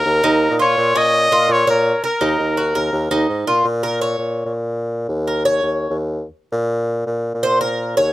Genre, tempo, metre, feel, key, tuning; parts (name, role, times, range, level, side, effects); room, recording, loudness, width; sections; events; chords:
latin, Cuban son and guajira; 167 BPM; 4/4; straight; Bb minor; A4 = 440 Hz
warm trumpet; melody; 0.0-3.3 s; Bb4 to Eb5; -17 LUFS; equal
Cuban tres; arpeggios; 0.0-8.1 s; Db4 to Db5; -19 LUFS; equal
mellow bassoon; bass; 0.0-8.1 s; Eb2 to Bb2; -20 LUFS; equal
light reverb; close, detailed microphones; -16 LUFS; side -16 dB against mid
0.0-3.7 A section; 3.7-8.1 B section
Cuban tres solo 3.7-8.1
0.0 Eb5; 0.8 Bbm; 2.2 Ebm; 3.7 Bbm; 5.1 Bbmadd11/Eb; 6.5 Bbsus2